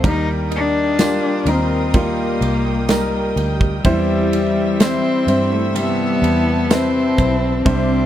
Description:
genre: pop ballad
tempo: 63 BPM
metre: 4/4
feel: straight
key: unclear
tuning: A4 = 440 Hz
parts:
  - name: warm cello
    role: melody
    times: 0.0-8.1 s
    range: G3 to Eb4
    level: -19 LUFS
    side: left 3 dB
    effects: none
  - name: warm concert grand piano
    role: accompaniment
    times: 0.0-8.1 s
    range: C3 to E5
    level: -22 LUFS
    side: right 1 dB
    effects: none
  - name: warm studio string section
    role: sustained chords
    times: 0.0-8.1 s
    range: C4 to E6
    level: -28 LUFS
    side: right 1 dB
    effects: none
  - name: clean electric guitar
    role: arpeggios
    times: 0.0-8.1 s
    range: C3 to C5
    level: -26 LUFS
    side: right 2 dB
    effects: ensemble chorus
  - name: vintage muted fingered electric bass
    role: bass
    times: 0.0-8.1 s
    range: B1 to G2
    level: -22 LUFS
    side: equal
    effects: none
  - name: modern studio drum kit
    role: drums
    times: 0.0-7.9 s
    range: kick drum, ride cymbal, snare drum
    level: -20 LUFS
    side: equal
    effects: none
  - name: tambourine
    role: percussion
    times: 1.0-6.9 s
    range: none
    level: -34 LUFS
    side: right 10 dB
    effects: none
room: small room reverb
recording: none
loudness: -15 LUFS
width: side -11 dB against mid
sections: 0.0-8.1 A section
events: none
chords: 0.0 Eb; 3.9 C/E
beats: | 0.04 0.99 1.95 2.90 | 3.85 4.80 5.75 6.71 | 7.66

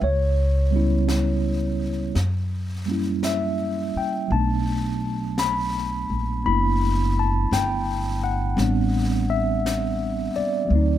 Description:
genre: jazz ballad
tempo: 56 BPM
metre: 4/4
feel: swing 67% on 8ths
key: unclear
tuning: A4 = 438 Hz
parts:
  - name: tine electric piano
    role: accompaniment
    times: 0.0-11.0 s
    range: F#3 to B5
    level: -23 LUFS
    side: equal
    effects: medium stereo tremolo
  - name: upright bass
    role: bass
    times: 0.0-11.0 s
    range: F#1 to F#2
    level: -24 LUFS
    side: equal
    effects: none
  - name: jazz brush drum kit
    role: drums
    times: 0.0-11.0 s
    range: brushed snare drum, hi-hat, snare drum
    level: -35 LUFS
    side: left 2 dB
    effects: none
room: little or no reverb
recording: close, detailed microphones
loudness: -21 LUFS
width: side -12 dB against mid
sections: 0.0-11.0 A section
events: none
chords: 0.0 C#m7b5; 2.2 F#7b9; 4.3 Bm7; 8.6 Am11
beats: | 0.02 1.08 2.16 3.23 | 4.31 5.38 6.45 7.52 | 8.58 9.64 10.70

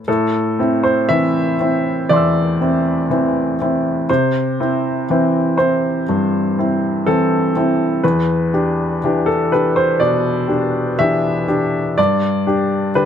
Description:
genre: neoclassical minimalist piano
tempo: 60 BPM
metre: 4/4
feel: rubato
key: A minor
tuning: A4 = 441 Hz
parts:
  - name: clear upright piano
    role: solo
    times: 0.0-13.1 s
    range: E2 to E6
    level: -14 LUFS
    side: equal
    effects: none
room: light reverb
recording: close, detailed microphones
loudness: -14 LUFS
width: side -8 dB against mid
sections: 0.1-13.1 A section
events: none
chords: 0.1 Am; 4.1 C; 8.0 Em7; 12.0 G5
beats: | 0.07 1.08 2.09 3.09 | 4.08 5.08 6.07 7.05 | 8.03 9.02 10.00 10.99 | 11.98 12.94

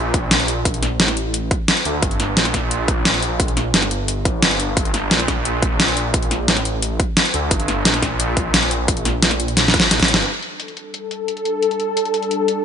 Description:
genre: dark technical drum and bass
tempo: 175 BPM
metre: 4/4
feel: straight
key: G minor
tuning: A4 = 440 Hz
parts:
  - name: wide detuned saw bass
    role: bass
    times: 0.0-10.2 s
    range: G1 to D2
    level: -21 LUFS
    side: equal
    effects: chorus, overdrive, sidechain pumping
  - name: dubstep drum kit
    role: drums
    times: 0.1-12.6 s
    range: hi-hat, snare drum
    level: -17 LUFS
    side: equal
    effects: overdrive, low-pass filter on hats, low-pass filter on snare, low-pass filter on cymbals, low-pass filter on room
  - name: electronic kick drum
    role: drums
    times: 0.1-10.1 s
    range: none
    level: -21 LUFS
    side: equal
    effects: overdrive
  - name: sweeping resonant pad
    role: sustained chords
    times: 10.3-12.6 s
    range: G3 to A4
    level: -19 LUFS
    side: left 2 dB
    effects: chorus, vintage 12-bit sampler grit, sidechain pumping
room: light reverb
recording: nothing above 10.5 kHz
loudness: -16 LUFS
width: side -8 dB against mid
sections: 0.0-10.3 A section; 10.3-12.6 B section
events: drum fill 9.6-10.3; band accent 10.1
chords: 0.0 Gm; 10.3 G5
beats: 0.31 | 0.65 1.00 1.34 1.68 | 2.02 2.37 2.71 3.05 | 3.40 3.74 4.08 4.42 | 4.77 5.11 5.45 5.80 | 6.14 6.48 6.83 7.17 | 7.51 7.85 8.20 8.54 | 8.88 9.22 9.57 9.91 | 10.25 10.60 10.94 11.28 | 11.62 11.97 12.31

